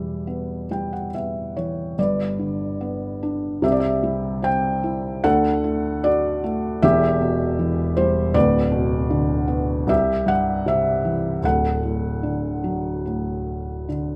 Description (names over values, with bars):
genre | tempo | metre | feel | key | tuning
classical, lyrical solo piano | 76 BPM | 4/4 | uneven beats, rubato | G major | A4 = 443 Hz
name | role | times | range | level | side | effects
felt-muted upright piano | solo | 0.0-14.2 s | D1 to G5 | -22 LUFS | equal | none
room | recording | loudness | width
light reverb | close, detailed microphones | -22 LUFS | mono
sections
0.0-2.0 A section; 2.0-14.2 B section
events
felt piano fill 0.3-2.0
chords
0.0 Em; 2.0 G; 3.6 C; 5.2 D; 6.8 Em; 8.4 Bm/D; 9.9 C; 11.4 D